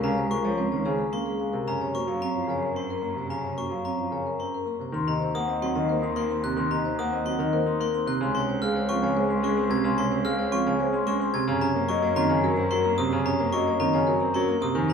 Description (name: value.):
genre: classical, minimalist pattern music.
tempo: 110 BPM.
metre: 3/4.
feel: straight.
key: unclear.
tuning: A4 = 440 Hz.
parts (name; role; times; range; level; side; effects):
vibraphone with soft mallets; melody; 0.0-14.9 s; Ab4 to C6; -29 LUFS; left 8 dB; none.
warm grand piano; accompaniment; 0.0-14.9 s; C3 to Eb4; -29 LUFS; equal; none.
glockenspiel with brass mallets; arpeggios; 0.0-14.9 s; Bb5 to Ab6; -31 LUFS; left 2 dB; none.
marimba with medium mallets; arpeggios; 0.0-14.9 s; C4 to C5; -30 LUFS; right 11 dB; none.
rich cello; bass; 0.0-14.9 s; Db2 to Gb2; -32 LUFS; right 3 dB; none.
room: wet recital hall reverb, RT60 1.3 s.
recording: minimal, uncompressed stereo recording.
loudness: -23 LUFS.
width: side -6 dB against mid.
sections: 0.0-4.9 A section; 4.9-14.9 B section.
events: none.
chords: 0.0 Dbmaj7; 1.7 Gbmaj7; 4.9 Ebm; 8.2 Db; 11.5 Gb6.